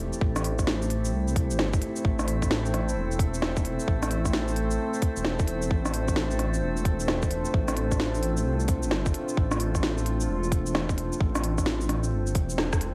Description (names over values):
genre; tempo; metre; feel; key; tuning
future garage; 131 BPM; 4/4; swing 64% on 16ths; unclear; A4 = 440 Hz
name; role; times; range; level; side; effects
dark analog pad; sustained chords; 0.0-12.9 s; A3 to C5; -34 LUFS; equal; lush chorus, sidechain pumping
dark detuned saw bass; bass; 0.0-12.9 s; E1 to C2; -31 LUFS; equal; sidechain pumping
drifting glass-harmonics texture; texture; 0.0-12.9 s; A3 to A4; -40 LUFS; equal; chorus, built-in reverb
organic electronic drum kit; drums; 0.1-12.9 s; hi-hat, rim click, shaker, snare drum; -33 LUFS; equal; overdrive
electronic kick drum; drums; 0.2-12.8 s; none; -29 LUFS; equal; overdrive
room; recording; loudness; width
light reverb; echo-heavy mix, vinyl crackle; -27 LUFS; mono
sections
0.0-12.9 A section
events
drum fill 12.6-12.9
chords
0.0 Am7; 5.7 F6